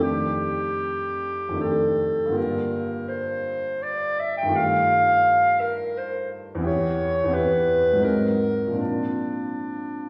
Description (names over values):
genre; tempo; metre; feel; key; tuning
classical, impressionist duo for clarinet and grand piano; 74-88 BPM; 3/4; rubato; unclear; A4 = 444 Hz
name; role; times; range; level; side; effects
warm clarinet; melody; 0.0-10.1 s; D4 to G5; -25 LUFS; equal; none
clear grand piano; accompaniment; 0.0-10.1 s; E2 to Ab4; -29 LUFS; equal; none
room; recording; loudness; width
wet recital hall reverb, RT60 1.6 s; heard from further back in the room; -23 LUFS; mono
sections
0.0-10.1 A section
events
none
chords
0.0 F13; 2.4 Gm7; 4.5 F9/G; 6.7 Em6; 8.0 Ab9; 8.8 Bbadd9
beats
| 0.03 0.83 1.60 | 2.37 3.09 3.83 | 4.55 5.26 5.97 | 6.66 7.35 8.04 | 8.79 9.60